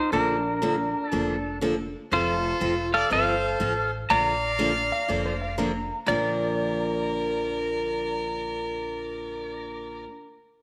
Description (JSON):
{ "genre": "country", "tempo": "121 BPM", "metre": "4/4", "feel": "swing 67% on 8ths", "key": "Bb major", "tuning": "A4 = 435 Hz", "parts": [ { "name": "clean lap steel guitar", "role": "melody", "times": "0.0-10.0 s", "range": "D4 to Bb5", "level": "-29 LUFS", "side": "equal", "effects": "none" }, { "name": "picked steel-string acoustic guitar", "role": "accompaniment", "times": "0.1-10.1 s", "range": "Bb2 to A4", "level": "-32 LUFS", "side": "equal", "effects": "none" }, { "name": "upright bass", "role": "bass", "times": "0.1-10.0 s", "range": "F1 to Bb1", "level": "-38 LUFS", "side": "equal", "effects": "none" }, { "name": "clear fiddle", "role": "second line", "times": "2.1-10.0 s", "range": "A4 to F5", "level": "-32 LUFS", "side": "equal", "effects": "none" }, { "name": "clean lap steel guitar", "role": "second line", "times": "4.9-10.0 s", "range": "C5 to Bb5", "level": "-37 LUFS", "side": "equal", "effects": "none" } ], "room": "wet echo chamber reverb, RT60 1.4 s, small room ambience", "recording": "none", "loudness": "-26 LUFS", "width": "mono", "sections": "0.0-2.1 A section; 2.1-6.1 B section; 6.1-10.1 C section", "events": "none", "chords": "0.1 Bbmaj7; 2.1 F; 4.1 Bbmaj7; 6.1 Bb", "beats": "| 0.13 0.63 1.12 1.62 | 2.11 2.61 3.10 3.60 | 4.10 4.59 5.09 5.59 | 6.08 6.58 7.07 7.57 | 8.07 8.56 9.06 9.56" }